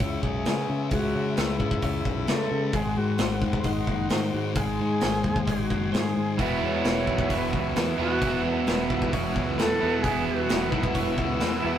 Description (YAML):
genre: rock, shoegaze and dream pop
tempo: 132 BPM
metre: 4/4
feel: straight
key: E major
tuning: A4 = 442 Hz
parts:
  - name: bright concert flute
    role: melody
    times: 0.0-11.8 s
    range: D#4 to C#5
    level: -31 LUFS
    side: equal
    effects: none
  - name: ensemble organ-string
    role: sustained chords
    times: 0.0-11.8 s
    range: B4 to E6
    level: -37 LUFS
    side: equal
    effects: phaser, ensemble chorus
  - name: direct-recorded clean electric guitar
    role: arpeggios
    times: 0.0-11.8 s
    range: F#4 to D#5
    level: -36 LUFS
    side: right 4 dB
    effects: none
  - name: thick fuzz guitar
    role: riff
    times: 0.0-11.8 s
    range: E2 to C#4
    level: -30 LUFS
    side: left 5 dB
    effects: distortion
  - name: fingered electric bass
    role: bass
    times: 0.0-11.8 s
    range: E1 to C#3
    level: -32 LUFS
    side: equal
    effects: none
  - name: big rock drum kit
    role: drums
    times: 0.0-11.5 s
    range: hi-hat, kick drum, snare drum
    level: -29 LUFS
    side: equal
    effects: none
  - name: biting overdriven guitar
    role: riff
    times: 6.4-11.8 s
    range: E3 to E4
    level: -29 LUFS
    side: right 6 dB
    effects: none
  - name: overdriven electric guitar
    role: riff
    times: 6.4-11.8 s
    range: E2 to E3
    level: -32 LUFS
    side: equal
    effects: none
room: wet studio reverb, RT60 0.6 s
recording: rough rehearsal-room recording, tube saturation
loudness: -23 LUFS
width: side -10 dB against mid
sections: 0.0-11.8 A section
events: none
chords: 0.0 C#m; 2.7 G#7; 6.4 Esus2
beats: 0.01 0.46 | 0.92 1.37 1.83 2.28 | 2.74 3.19 3.65 4.10 | 4.56 5.01 5.47 5.93 | 6.38 6.84 7.30 7.75 | 8.21 8.67 9.13 9.58 | 10.04 10.50 10.96 11.42